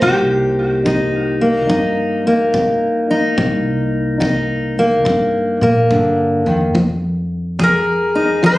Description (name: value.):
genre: acoustic country blues, solo or duo.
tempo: 71 BPM.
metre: 4/4.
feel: swing 66% on 8ths.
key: C minor.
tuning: A4 = 438 Hz.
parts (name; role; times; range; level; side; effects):
metal-body resonator slide guitar; melody; 0.0-2.5, 7.6-8.6 s; G4 to C5; -17 LUFS; equal; tape echo.
fingerpicked steel-string acoustic guitar; accompaniment; 0.0-8.6 s; C3 to Ab4; -15 LUFS; left 1 dB; none.
upright bass; bass; 0.0-8.6 s; C2 to Bb2; -22 LUFS; equal; none.
kick drum; drums; 0.0-8.6 s; none; -27 LUFS; equal; none.
room: light reverb.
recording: recorded on a phone in the room, studio reverb, compression.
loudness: -14 LUFS.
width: side -18 dB against mid.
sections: 0.0-8.6 A section.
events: none.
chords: 0.0 Cm7; 6.8 Fm7.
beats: | 0.01 0.86 1.70 2.54 | 3.38 4.22 5.07 5.91 | 6.75 7.59 8.44.